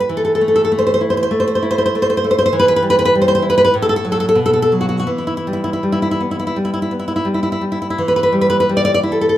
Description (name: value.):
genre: romantic piece for solo classical guitar.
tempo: 80-103 BPM.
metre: 4/4.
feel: rubato.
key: E minor.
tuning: A4 = 440 Hz.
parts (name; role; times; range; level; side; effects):
nylon-string guitar; solo; 0.0-9.4 s; A2 to D5; -13 LUFS; equal; none.
room: moderate large studio reverb, RT60 0.9 s.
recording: band playing live in one room.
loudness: -13 LUFS.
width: side -13 dB against mid.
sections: 0.0-8.0 A section; 8.0-9.4 A section.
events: none.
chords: 0.1 A5/E; 2.6 Em; 3.8 F#m/A; 4.4 B5; 5.1 Em.